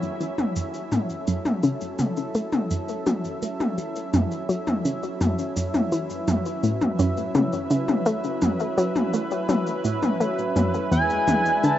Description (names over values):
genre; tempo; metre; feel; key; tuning
ambient, sequencer-driven space music; 84 BPM; 4/4; straight; F# minor; A4 = 440 Hz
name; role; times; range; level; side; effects
lush unison pad; sustained chords; 0.0-11.8 s; F#3 to E5; -28 LUFS; right 1 dB; chorus
analog pluck; riff; 0.0-11.8 s; E2 to A3; -25 LUFS; equal; chorus, ping-pong delay
electronic shaker and toms; percussion; 0.0-11.8 s; none; -26 LUFS; left 1 dB; ping-pong delay
pulse-width lead; melody; 10.9-11.8 s; G#5 to A5; -21 LUFS; equal; chorus
room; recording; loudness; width
moderate huge ambient reverb, RT60 9.2 s; worn, warbling old tape, cassette tape, warbly pitch drift, nothing above 7.8 kHz; -22 LUFS; side -12 dB against mid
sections
0.0-11.8 A section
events
fade-in on analog synth pad 0.0-11.8; filter sweep on synth arpeggio sound 0.0-11.8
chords
0.0 F#m7; 10.9 E7